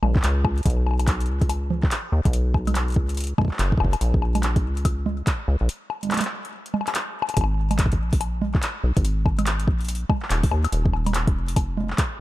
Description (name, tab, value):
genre	IDM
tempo	143 BPM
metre	4/4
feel	swing 62% on 16ths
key	unclear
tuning	A4 = 440 Hz
part	deep acid bass	bass	0.0-11.9 s	D#1 to D#2	-23 LUFS	equal	tube saturation
part	booming analog drum machine	drums	0.0-12.1 s	bongos, congas, handclaps, hi-hat	-27 LUFS	equal	none
part	electronic kick drum	drums	0.2-12.1 s	none	-22 LUFS	equal	none
room	digital ambience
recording	dark, warm production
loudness	-20 LUFS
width	side -16 dB against mid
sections	0.0-12.2 A section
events	break 5.7-7.4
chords	none